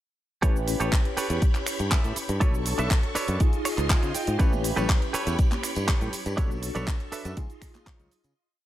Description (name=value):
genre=filtered disco house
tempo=121 BPM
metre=4/4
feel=straight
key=A mixolydian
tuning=A4 = 442 Hz
part: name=tine electric piano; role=accompaniment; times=0.4-8.3 s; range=C#4 to C#5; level=-34 LUFS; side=equal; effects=overdrive, fast stereo tremolo, phaser, sidechain pumping
part: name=phased string machine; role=sustained chords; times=0.4-8.4 s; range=E#4 to C#6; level=-35 LUFS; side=equal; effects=ensemble chorus, phaser, sidechain pumping
part: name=direct-recorded clean electric guitar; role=riff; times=0.4-8.1 s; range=D4 to G5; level=-32 LUFS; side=right 3 dB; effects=vibrato effect, sidechain pumping
part: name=modern bright fingered electric bass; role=bass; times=0.4-8.3 s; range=A1 to C#3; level=-29 LUFS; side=equal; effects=sidechain pumping
part: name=electronic kick drum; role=drums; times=0.4-8.0 s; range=none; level=-23 LUFS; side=equal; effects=none
part: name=house drum kit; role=drums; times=0.4-8.3 s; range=finger snaps, handclaps, hi-hat, shaker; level=-31 LUFS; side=right 1 dB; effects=sidechain pumping on hats, sidechain pumping on perc
part: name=tambourine and congas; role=percussion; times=4.4-8.3 s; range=none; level=-39 LUFS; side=left 2 dB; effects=sidechain pumping on perc
room=light reverb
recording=none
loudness=-23 LUFS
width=side -13 dB against mid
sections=0.4-8.4 drop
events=drop 0.4-8.4; clean electric guitar fill 3.4-4.4; fade-out 5.7-8.4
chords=0.4 A9; 2.4 Bm9; 3.4 C#maj9; 4.4 A9; 6.4 Bm9; 7.4 C#maj9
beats=| 0.43 0.93 1.42 1.92 | 2.41 2.91 3.40 3.90 | 4.40 4.89 5.39 5.88 | 6.38 6.88 7.37 7.87